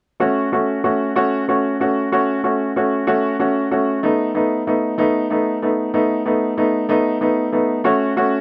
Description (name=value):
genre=pop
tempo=63 BPM (dotted quarters)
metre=6/8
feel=straight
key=unclear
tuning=A4 = 440 Hz
part: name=bright upright piano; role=accompaniment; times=0.2-8.4 s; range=A3 to F#4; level=-18 LUFS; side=equal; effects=none
room=moderate booth ambience, RT60 0.2 s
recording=worn, warbling old tape, cassette tape, warbly pitch drift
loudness=-19 LUFS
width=mono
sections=0.2-7.9 A section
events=none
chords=0.2 A6; 4.0 B7; 7.9 A6